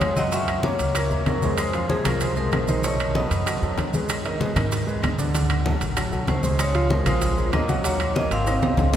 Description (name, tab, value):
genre	Afro-Cuban jazz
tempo	192 BPM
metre	4/4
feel	straight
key	unclear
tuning	A4 = 441 Hz
part	vibraphone with medium hard mallets	melody	0.0-3.7, 6.3-8.9 s	Ab4 to F5	-28 LUFS	equal	none
part	trombone with metal mute	second line	0.0-3.7, 6.3-8.9 s	F3 to Db4	-32 LUFS	left 2 dB	none
part	warm grand piano	accompaniment	0.0-9.0 s	D3 to Gb5	-27 LUFS	right 1 dB	none
part	upright bass	bass	0.0-9.0 s	Ab1 to G#2	-25 LUFS	equal	none
part	bongos	percussion	0.0-9.0 s	none	-34 LUFS	left 3 dB	none
part	claves	percussion	0.0-8.6 s	none	-37 LUFS	left 2 dB	none
part	congas	percussion	0.0-9.0 s	none	-28 LUFS	left 1 dB	none
part	maracas	percussion	0.0-9.0 s	none	-37 LUFS	right 4 dB	none
part	timbales	percussion	0.0-9.0 s	none	-31 LUFS	right 5 dB	none
room	wet cathedral reverb, RT60 5.7 s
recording	recorded in a church or concert hall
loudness	-20 LUFS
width	side -10 dB against mid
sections	0.0-9.0 A section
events	drum fill 8.5-9.0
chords	0.3 Gb9; 1.6 Fm7; 2.8 Cb9; 4.1 Emaj7; 5.3 D7#11; 6.6 Dbmaj7; 7.2 Bb5; 7.8 Ebm7